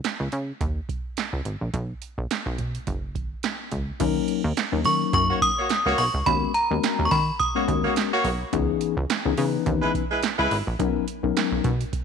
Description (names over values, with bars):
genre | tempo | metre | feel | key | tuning
early-eighties boogie funk | 106 BPM | 4/4 | swing 56% on 16ths | unclear | A4 = 440 Hz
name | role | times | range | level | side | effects
electro analog drum machine | drums | 0.0-12.0 s | crash cymbal, handclaps, hi-hat, kick drum, snare drum | -29 LUFS | right 5 dB | none
plucky analog bass | bass | 0.2-11.8 s | F#1 to D#3 | -26 LUFS | right 1 dB | none
mellow tine electric piano | accompaniment | 4.0-11.7 s | E3 to B4 | -26 LUFS | left 14 dB | medium stereo tremolo
metallic FM bell | melody | 4.9-8.2 s | A#5 to D#6 | -23 LUFS | equal | chorus
warm horn section | second line | 5.3-10.6 s | G#3 to C#5 | -26 LUFS | equal | none
room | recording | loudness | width
light reverb, digital ambience | 1960s-style stereo | -22 LUFS | side -6 dB against mid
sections
0.0-4.0 A section; 4.0-12.0 B section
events
none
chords
0.0 C#sus2; 1.7 N.C.; 2.9 F#5; 4.0 D#m7; 6.3 G#m11/D#; 8.5 C#m9; 10.8 Bmaj9